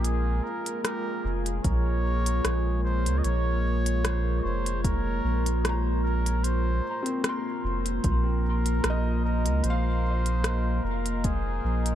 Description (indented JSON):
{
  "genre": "ambient dub",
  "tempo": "75 BPM",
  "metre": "4/4",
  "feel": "swing 54% on 16ths",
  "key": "Bb minor",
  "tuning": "A4 = 440 Hz",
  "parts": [
    { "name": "trumpet with cup mute", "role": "melody", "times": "0.0-11.9 s", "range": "Ab4 to Eb5", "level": "-34 LUFS", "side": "right 1 dB", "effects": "dub echo" },
    { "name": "deep dark ambient pad", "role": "sustained chords", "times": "0.0-11.9 s", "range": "Ab3 to Bb5", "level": "-31 LUFS", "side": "equal", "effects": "chorus, built-in reverb" },
    { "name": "felt-muted upright piano", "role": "arpeggios", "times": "0.0-11.9 s", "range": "C4 to C6", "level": "-37 LUFS", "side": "left 2 dB", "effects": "dub echo" },
    { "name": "soft dub sub bass", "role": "bass", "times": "0.0-11.9 s", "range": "F1 to Db2", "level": "-26 LUFS", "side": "equal", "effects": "none" },
    { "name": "organic electronic drum kit", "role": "drums", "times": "0.0-11.9 s", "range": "hi-hat, rim click", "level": "-31 LUFS", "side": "equal", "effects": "none" },
    { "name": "electronic kick drum", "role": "drums", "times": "1.6-11.4 s", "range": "none", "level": "-27 LUFS", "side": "equal", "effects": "overdrive" }
  ],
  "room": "light reverb, digital ambience",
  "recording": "none",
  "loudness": "-24 LUFS",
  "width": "side -11 dB against mid",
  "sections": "0.0-11.9 A section",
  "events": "none",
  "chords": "0.0 Bbm7; 9.6 Abadd9",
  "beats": "| 0.04 0.84 1.65 2.44 | 3.25 4.04 4.84 5.64 | 6.45 7.25 8.04 8.85 | 9.64 10.45 11.24"
}